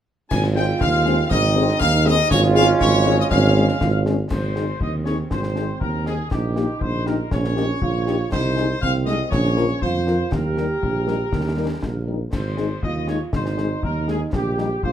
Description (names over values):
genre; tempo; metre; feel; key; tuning
military-style march for wind band; 120 BPM; 2/4; straight; Ab major; A4 = 440 Hz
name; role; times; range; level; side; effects
clear trumpet section; melody; 0.3-14.9 s; G4 to Ab5; -25 LUFS; left 2 dB; none
clear euphonium; second line; 0.3-14.9 s; C4 to G4; -25 LUFS; right 4 dB; none
warm trombone section; sustained chords; 0.3-4.0 s; Ab3 to Db4; -27 LUFS; right 2 dB; none
mellow tuba; bass; 0.3-14.9 s; Ab1 to F2; -22 LUFS; right 2 dB; none
concert snare drum, clash cymbals and concert bass drum; drums; 0.3-14.9 s; none; -28 LUFS; left 2 dB; none
mellow French horn section; accompaniment; 0.6-14.7 s; F3 to Bb4; -26 LUFS; left 5 dB; none
room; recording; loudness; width
moderate large studio reverb, RT60 1.3 s; none; -18 LUFS; side -10 dB against mid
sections
0.3-4.3 A section; 4.3-14.9 B section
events
none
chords
0.3 Ab; 2.3 Db/Ab; 4.3 Ab; 6.3 Eb7/Bb; 8.3 Ab/C; 9.3 Bbm; 10.3 Eb; 12.3 Ab; 14.3 Eb/Bb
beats
| 0.31 0.81 | 1.31 1.81 | 2.31 2.81 | 3.31 3.81 | 4.31 4.81 | 5.31 5.81 | 6.31 6.81 | 7.31 7.81 | 8.31 8.81 | 9.32 9.82 | 10.32 10.82 | 11.32 11.83 | 12.33 12.83 | 13.33 13.83 | 14.34 14.84